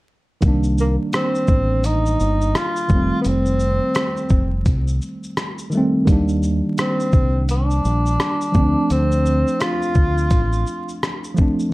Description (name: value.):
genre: lo-fi hip hop.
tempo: 85 BPM.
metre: 4/4.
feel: swing 61% on 16ths.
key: C dorian.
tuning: A4 = 440 Hz.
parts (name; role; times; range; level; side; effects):
mellow tine electric piano; accompaniment; 0.4-11.7 s; Eb3 to D4; -22 LUFS; right 1 dB; medium stereo tremolo.
deep dub fingered electric bass; bass; 0.4-10.6 s; F1 to Eb2; -20 LUFS; equal; none.
dusty soul sampler-style drum kit; drums; 0.4-11.7 s; hi-hat, kick drum, rim click, shaker; -20 LUFS; equal; none.
breathy tenor saxophone; melody; 0.8-11.0 s; Bb3 to F4; -22 LUFS; equal; plate reverb.
room: moderate small room reverb, RT60 0.5 s.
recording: dark, warm production, vinyl crackle.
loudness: -16 LUFS.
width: side -20 dB against mid.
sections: 0.4-11.7 A section.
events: none.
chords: 0.4 Cm7; 2.9 F7; 6.1 Cm7; 8.5 Dm7.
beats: | 0.43 1.14 1.84 2.55 | 3.25 3.96 4.67 5.37 | 6.08 6.78 7.49 8.20 | 8.90 9.61 10.31 11.02 | 11.72.